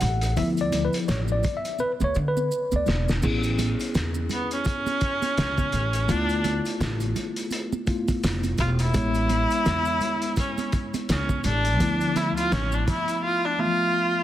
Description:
hip hop, jazz-hop; 84 BPM; 4/4; swing 58% on 16ths; A major; A4 = 440 Hz
mellow tine electric piano; accompaniment; 0.0-14.2 s; E3 to F#5; -28 LUFS; left 1 dB; medium stereo tremolo
upright bass; bass; 0.0-12.8 s; E1 to D3; -26 LUFS; equal
cloth-damped thuddy drum kit; drums; 0.0-13.2 s; crash cymbal, hi-hat, kick drum, snare drum; -28 LUFS; equal
congas and maracas; percussion; 0.0-13.2 s; -34 LUFS; right 7 dB
clear viola; melody; 4.3-14.2 s; B3 to F4; -25 LUFS; equal; slapback echo
light reverb; dense, heavily limited modern master, faint mains hum; -22 LUFS; side -12 dB against mid
0.0-3.2 A section; 3.2-14.2 A section
tine electric piano solo 0.0-3.2; drum fill 1.8-3.2; viola solo 3.2-14.2; drums muted 13.2-14.2
0.4 Dm6; 3.2 Amaj9; 6.1 Dm6; 8.9 Amaj9; 11.8 Dm6

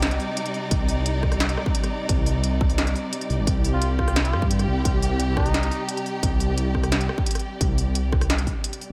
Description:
half-time drum and bass; 174 BPM; 4/4; half-time; C minor; A4 = 438 Hz
trumpet with cup mute; melody; 0.0-0.1, 3.7-5.9 s; Eb4 to F4; -36 LUFS; equal; tape echo
warm symphonic string section; sustained chords; 0.0-8.9 s; C3 to D5; -32 LUFS; equal; sidechain pumping
dark detuned saw bass; bass; 0.0-8.5 s; G1 to G2; -26 LUFS; equal; tube saturation
industrial drum kit; drums; 0.0-8.9 s; hi-hat, rim click, snare drum; -30 LUFS; equal
electronic kick drum; drums; 0.7-8.5 s; -27 LUFS; equal; distortion
light reverb, digital ambience; -23 LUFS; mono
0.0-8.9 A section
0.0 Cmadd9

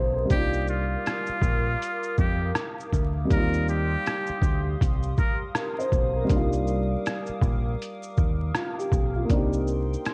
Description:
lo-fi hip hop; 80 BPM; 4/4; swing 62% on 16ths; C minor; A4 = 440 Hz
dark upright piano; accompaniment; 0.0-10.1 s; G3 to Eb5; -32 LUFS; equal; cassette tape, low-pass filter
hollow soft pad; sustained chords; 0.0-10.1 s; G4 to Eb6; -39 LUFS; equal; chorus, low-pass filter
deep dub fingered electric bass; bass; 0.0-9.9 s; Bb1 to F2; -30 LUFS; equal
trumpet with metal mute; melody; 0.3-5.4 s; F4 to Bb4; -33 LUFS; equal; low-pass filter
trip hop sampler-style drum kit; drums; 0.3-10.1 s; hi-hat, kick drum, rim click, shaker; -29 LUFS; equal; vintage 12-bit sampler grit
light reverb, digital ambience; worn, warbling old tape, cassette tape, vinyl crackle, warbly pitch drift, nothing above 11.0 kHz; -26 LUFS; mono
0.0-10.1 A section
break 0.0-0.3
0.3 Cm11; 3.3 Eb69; 6.3 Cm11; 9.3 Cm7

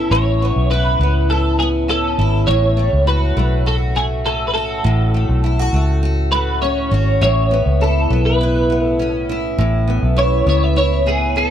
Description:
acoustic pop; 101 BPM; 4/4; straight; A major; A4 = 440 Hz
twelve-string electric guitar; melody; 0.0-11.5 s; G#4 to E5; -20 LUFS; right 1 dB; ensemble chorus, tape echo
picked steel-string acoustic guitar; accompaniment; 0.0-11.5 s; A2 to F#4; -20 LUFS; equal; double-tracked left and right
vintage muted fingered electric bass; bass; 0.0-11.5 s; G#1 to C#2; -17 LUFS; equal
light reverb, studio reverb; -14 LUFS; side -10 dB against mid
0.0-11.5 A section
0.0 Aadd9; 2.5 F#m/A; 7.2 Aadd9

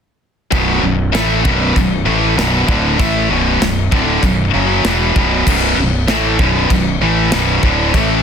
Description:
heavy metal; 97 BPM; 4/4; straight; B minor; A4 = 439 Hz
heavy high-gain guitar; riff; 0.5-8.2 s; B1 to A3; -14 LUFS; equal; distortion
fuzz fingered electric bass; bass; 0.5-8.2 s; B0 to A1; -18 LUFS; equal; overdrive
modern studio drum kit; drums; 0.5-8.1 s; china cymbal, crash cymbal, kick drum, snare drum; -19 LUFS; equal
little or no reverb; dense, heavily limited modern master; -12 LUFS; side -7 dB against mid
0.5-8.2 A section
0.5 Bm

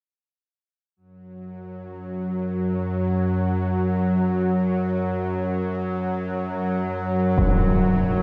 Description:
dark ambient drone; free time; A4 = 440 Hz
bowed-like drone; drone; 1.3-8.2 s; F#2 to F#3; -24 LUFS; equal; built-in reverb
impact; percussion; 7.4-7.6 s; -24 LUFS; equal; low-pass filter on sfx
wet cathedral reverb, RT60 6.6 s; -23 LUFS; mono
0.9-8.2 A section

